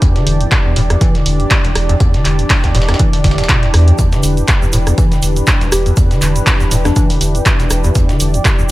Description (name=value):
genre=acid house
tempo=121 BPM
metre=4/4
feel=swing 56% on 16ths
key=E minor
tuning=A4 = 440 Hz
part: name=warm analog pad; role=sustained chords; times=0.0-8.7 s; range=E3 to D5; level=-20 LUFS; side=equal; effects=chorus, sidechain pumping
part: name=acid bass, square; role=riff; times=0.0-8.6 s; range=E1 to E3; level=-17 LUFS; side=equal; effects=overdrive, lush chorus, sidechain pumping
part: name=dusty soul sampler-style drum kit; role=drums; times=0.0-8.6 s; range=hi-hat, snare drum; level=-27 LUFS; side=equal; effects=sidechain pumping on hats, high-pass filter on hats, high-pass filter on snare, high-pass filter on room
part: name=electronic kick drum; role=drums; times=0.0-8.6 s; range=none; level=-14 LUFS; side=equal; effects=none
part: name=punchy analog drum machine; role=drums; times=0.0-8.6 s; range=handclaps, hi-hat, rim click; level=-18 LUFS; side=equal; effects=none
part: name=warm sub bass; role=bass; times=0.3-8.4 s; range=E1 to E2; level=-15 LUFS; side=equal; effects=tube saturation, sidechain pumping
part: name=tube shaker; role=percussion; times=4.0-8.7 s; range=none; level=-27 LUFS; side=right 5 dB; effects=none
part: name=soft struck synth lead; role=melody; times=5.7-7.1 s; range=D4 to G4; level=-21 LUFS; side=left 2 dB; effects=chorus, dub echo
room=digital ambience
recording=none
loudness=-10 LUFS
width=side -17 dB against mid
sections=0.0-8.7 A section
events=none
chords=0.0 Em7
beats=| 0.02 0.52 1.01 1.51 | 2.00 2.50 3.00 3.49 | 3.99 4.48 4.98 5.47 | 5.97 6.47 6.96 7.46 | 7.95 8.45